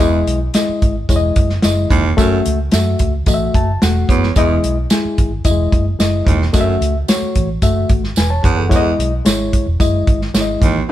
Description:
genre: uptempo 1960s-style soul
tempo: 110 BPM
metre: 4/4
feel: straight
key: E major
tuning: A4 = 439 Hz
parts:
  - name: bright reed electric piano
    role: accompaniment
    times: 0.0-10.9 s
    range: F#3 to A5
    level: -18 LUFS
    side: left 3 dB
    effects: none
  - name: bright baritone saxophone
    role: riff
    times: 0.0-10.9 s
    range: D#2 to F#2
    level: -20 LUFS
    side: right 5 dB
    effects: none
  - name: vintage muted fingered electric bass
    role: bass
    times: 0.0-10.8 s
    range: E1 to F#2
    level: -18 LUFS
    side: equal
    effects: none
  - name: warm soul drum kit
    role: drums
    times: 0.0-10.7 s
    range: hi-hat, kick drum, snare drum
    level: -16 LUFS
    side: equal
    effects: none
  - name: tambourine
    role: percussion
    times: 0.0-10.5 s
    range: none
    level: -27 LUFS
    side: right 5 dB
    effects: none
room: light reverb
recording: band playing live in one room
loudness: -13 LUFS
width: side -13 dB against mid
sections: 0.0-10.9 A section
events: reed electric piano fill 3.3-4.4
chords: 0.0 Emaj7; 2.2 F#m7; 4.4 Emaj7; 6.5 F#m7; 8.7 Emaj7

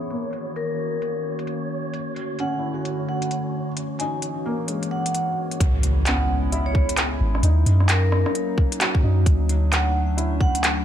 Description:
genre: future garage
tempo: 131 BPM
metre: 4/4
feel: swing 62% on 16ths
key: C# dorian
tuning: A4 = 441 Hz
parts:
  - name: felt-muted upright piano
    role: accompaniment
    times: 0.0-10.8 s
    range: G#3 to G#4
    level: -32 LUFS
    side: equal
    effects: sidechain pumping, digital delay
  - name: warbly tape-like pad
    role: sustained chords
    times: 0.0-10.8 s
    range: D3 to F#4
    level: -29 LUFS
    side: left 1 dB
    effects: chorus, built-in reverb, sidechain pumping
  - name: wind-like tuned noise texture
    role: texture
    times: 0.0-5.6 s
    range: C#5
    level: -36 LUFS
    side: right 2 dB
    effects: built-in reverb
  - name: organic electronic drum kit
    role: drums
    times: 0.1-10.8 s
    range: handclaps, hi-hat, rim click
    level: -24 LUFS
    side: equal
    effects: none
  - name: vibraphone with medium mallets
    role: melody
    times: 0.6-10.7 s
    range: A#4 to G#5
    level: -29 LUFS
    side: equal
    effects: digital delay
  - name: soft 808-style bass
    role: bass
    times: 5.6-10.8 s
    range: G#1 to F#2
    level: -20 LUFS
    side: equal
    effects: sidechain pumping
  - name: electronic kick drum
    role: drums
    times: 5.6-10.5 s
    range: none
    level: -19 LUFS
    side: equal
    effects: none
  - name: impact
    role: sound effects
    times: 5.6-7.4 s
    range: none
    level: -30 LUFS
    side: equal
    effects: none
room: light reverb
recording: low-pass filter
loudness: -20 LUFS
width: side -10 dB against mid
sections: 0.0-5.6 A section; 5.6-10.8 B section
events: filter sweep on felt piano 0.0-5.6; filter sweep 0.0-5.6; impact 5.6-7.4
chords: 0.1 D#m7; 1.9 Dmaj7; 3.8 F#7; 5.6 C#m7; 7.4 D#m7; 9.3 Dmaj7

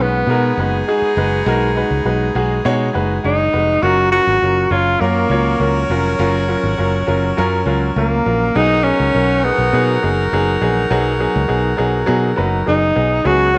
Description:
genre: soul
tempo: 102 BPM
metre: 4/4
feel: straight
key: unclear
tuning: A4 = 440 Hz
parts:
  - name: breathy tenor saxophone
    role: melody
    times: 0.0-13.6 s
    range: A#3 to F#4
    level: -18 LUFS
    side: equal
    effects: none
  - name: clear baby grand piano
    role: accompaniment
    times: 0.0-13.6 s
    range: F#3 to C#5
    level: -22 LUFS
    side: equal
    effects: none
  - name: fingered electric bass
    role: bass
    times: 0.0-13.6 s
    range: E#1 to B2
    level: -22 LUFS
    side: equal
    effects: none
  - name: bright saxophone section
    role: second line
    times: 0.3-12.9 s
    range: B3 to C#5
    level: -24 LUFS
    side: equal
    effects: none
room: moderate echo chamber reverb, RT60 1.5 s, studio reverb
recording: none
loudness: -16 LUFS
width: mono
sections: 0.0-13.6 A section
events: none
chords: 0.0 B6; 3.8 F#maj7; 8.6 B6

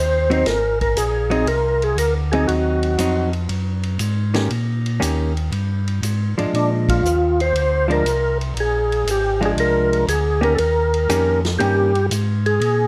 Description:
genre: soul jazz organ trio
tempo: 119 BPM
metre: 4/4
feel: swing 69% on 8ths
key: Eb major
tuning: A4 = 442 Hz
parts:
  - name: percussive tonewheel organ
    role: melody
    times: 0.0-3.3, 6.6-12.9 s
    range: D4 to C5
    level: -21 LUFS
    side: equal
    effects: overdrive, chorus vibrato, slow rotary speaker
  - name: tonewheel organ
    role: bass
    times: 0.0-12.9 s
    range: Ab1 to Bb2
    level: -24 LUFS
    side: equal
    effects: overdrive, stopped rotary speaker
  - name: hollow-body jazz guitar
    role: accompaniment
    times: 0.3-11.9 s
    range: Eb3 to G4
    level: -24 LUFS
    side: equal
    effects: none
  - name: vintage drum kit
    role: drums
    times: 0.3-12.8 s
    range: hi-hat, kick drum, ride cymbal, snare drum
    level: -32 LUFS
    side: equal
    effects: none
room: light reverb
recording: none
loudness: -19 LUFS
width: mono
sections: 0.0-12.9 A section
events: band accent 6.8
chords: 0.0 Ab7; 4.5 Eb7; 6.5 Bb7; 10.6 Eb7

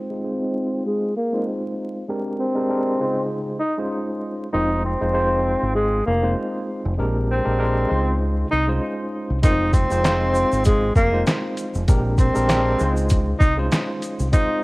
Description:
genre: hip hop, boom-bap hip-hop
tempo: 98 BPM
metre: 4/4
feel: swing 54% on 16ths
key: F minor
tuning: A4 = 439 Hz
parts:
  - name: breathy tenor saxophone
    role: melody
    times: 0.0-14.6 s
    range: Ab3 to Eb4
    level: -22 LUFS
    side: equal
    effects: high-pass filter, low-pass filter, cassette tape, analog delay
  - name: tine electric piano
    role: accompaniment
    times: 0.0-14.6 s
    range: Db3 to C5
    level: -25 LUFS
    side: equal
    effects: medium stereo tremolo, high-pass filter, low-pass filter, cassette tape
  - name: deep dub fingered electric bass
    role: bass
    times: 4.5-14.3 s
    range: F1 to Db2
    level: -23 LUFS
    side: equal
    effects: tube saturation
  - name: boom bap sampler-style drum kit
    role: drums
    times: 9.4-14.5 s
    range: handclaps, hi-hat, kick drum, shaker, snare drum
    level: -18 LUFS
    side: equal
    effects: none
  - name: tube shaker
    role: percussion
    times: 9.4-14.5 s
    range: none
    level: -41 LUFS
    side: left 2 dB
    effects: none
room: digital ambience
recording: home recording on cassette, vinyl crackle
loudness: -18 LUFS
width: side -23 dB against mid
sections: 0.0-9.4 A section; 9.4-14.6 B section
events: filter sweep 0.0-9.4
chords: 0.0 Fm7; 2.1 Bb13; 3.0 Dbmaj9; 4.5 Fm7; 7.0 Bb13; 7.9 Dbmaj9; 9.4 Fm7; 11.9 Bb13; 12.8 Dbmaj9

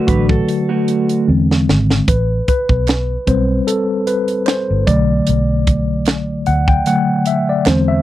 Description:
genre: lush 1970s-style soul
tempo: 75 BPM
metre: 4/4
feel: swing 54% on 16ths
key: unclear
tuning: A4 = 441 Hz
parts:
  - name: mellow tine electric piano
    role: accompaniment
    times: 0.0-8.0 s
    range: D3 to G5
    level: -16 LUFS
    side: left 2 dB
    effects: medium stereo tremolo
  - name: electric guitar through a small old amp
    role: riff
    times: 0.0-1.3 s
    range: A3 to B4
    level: -20 LUFS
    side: right 6 dB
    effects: none
  - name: vintage muted fingered electric bass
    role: bass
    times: 0.1-8.0 s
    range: G1 to E2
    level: -17 LUFS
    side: right 1 dB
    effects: none
  - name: tight funk drum kit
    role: drums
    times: 0.1-7.9 s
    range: hi-hat, kick drum, snare drum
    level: -17 LUFS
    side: right 1 dB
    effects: none
  - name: group handclap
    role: percussion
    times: 2.9-7.9 s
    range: none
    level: -28 LUFS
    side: right 18 dB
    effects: none
room: little or no reverb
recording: dry, close 1970s-style studio recording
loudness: -13 LUFS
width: side -14 dB against mid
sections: 0.0-8.0 A section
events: tine electric piano solo 0.0-8.0; drum fill 1.3-2.1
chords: 0.0 Bm7; 1.3 Eaug7; 2.1 Am9; 4.9 Bm7

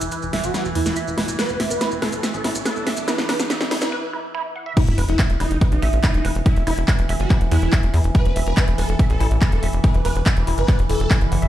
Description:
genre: psychedelic trance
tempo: 142 BPM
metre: 4/4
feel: straight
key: unclear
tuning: A4 = 439 Hz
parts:
  - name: overtone-sweeping drone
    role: sustained chords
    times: 0.0-11.5 s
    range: E3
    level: -29 LUFS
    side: right 1 dB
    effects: chorus, built-in reverb, sidechain pumping
  - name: tight sequencer bass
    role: bass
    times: 0.0-11.5 s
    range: E1 to E2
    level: -21 LUFS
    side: equal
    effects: none
  - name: big-room dance drum kit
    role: drums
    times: 0.0-11.5 s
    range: crash cymbal, handclaps, hi-hat, snare drum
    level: -26 LUFS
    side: equal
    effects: none
  - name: maracas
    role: percussion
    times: 0.0-3.9 s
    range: none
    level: -32 LUFS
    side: right 2 dB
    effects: none
  - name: riser and sub drop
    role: sound effects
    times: 1.0-6.5 s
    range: none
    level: -30 LUFS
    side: equal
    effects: none
  - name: woody wave-folded pluck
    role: riff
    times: 0.1-11.5 s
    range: E4 to F#5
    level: -30 LUFS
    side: moving between left 1 dB and right 7 dB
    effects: chorus, auto-pan, sidechain pumping, tape echo
  - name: swarming rave lead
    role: melody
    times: 0.4-11.1 s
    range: D#4 to B4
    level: -28 LUFS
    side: equal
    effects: chorus, phaser, sidechain pumping, dub echo
  - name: electronic kick drum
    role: drums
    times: 4.8-11.2 s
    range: none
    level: -18 LUFS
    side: equal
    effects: overdrive
room: light reverb, digital ambience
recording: played on a big sound system in a bare room, stone room reverb, high-pass filter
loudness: -17 LUFS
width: side -13 dB against mid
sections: 0.0-4.8 A section; 4.8-11.5 B section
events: build-up 0.0-4.8; drum fill 0.0-3.9; riser 1.0-3.9; filter sweep on synth arpeggio sound 0.0-4.8; filter sweep on digital synth lead 0.0-4.8; break 3.9-4.8; drop 4.8-11.5; impact 4.8-6.5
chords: 0.0 E5

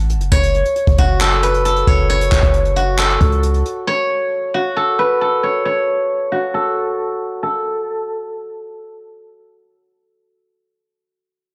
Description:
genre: hip hop, trap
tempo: 135 BPM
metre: 4/4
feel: half-time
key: F# minor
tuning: A4 = 440 Hz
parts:
  - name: steel-string zither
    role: melody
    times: 0.0-9.6 s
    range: F#4 to A5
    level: -19 LUFS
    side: equal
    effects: low-pass filter
  - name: warm 808-style bass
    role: bass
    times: 0.0-3.6 s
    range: F#1 to C#2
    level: -19 LUFS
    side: equal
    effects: none
  - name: jazz brush drum kit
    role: drums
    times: 0.1-3.8 s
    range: handclaps, hi-hat, kick drum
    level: -20 LUFS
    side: equal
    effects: none
room: studio ambience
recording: dry, gritty hardware recording, cassette tape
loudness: -17 LUFS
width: mono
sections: 0.3-7.4 A section; 7.4-11.0 B section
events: filter sweep on guzheng 0.3-7.4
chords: 0.3 F#m; 3.9 N.C.

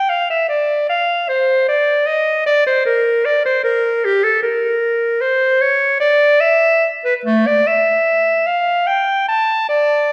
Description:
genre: classical, baroque-style fantasia for unaccompanied clarinet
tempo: 76 BPM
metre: 4/4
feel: rubato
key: D minor from 4.0 s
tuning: A4 = 440 Hz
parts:
  - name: bright clarinet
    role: solo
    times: 0.0-10.1 s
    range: A3 to A5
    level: -16 LUFS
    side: equal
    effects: none
room: wet recital hall reverb, RT60 1.5 s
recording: heard from further back in the room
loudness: -16 LUFS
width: mono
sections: 0.0-10.1 A section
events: none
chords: none

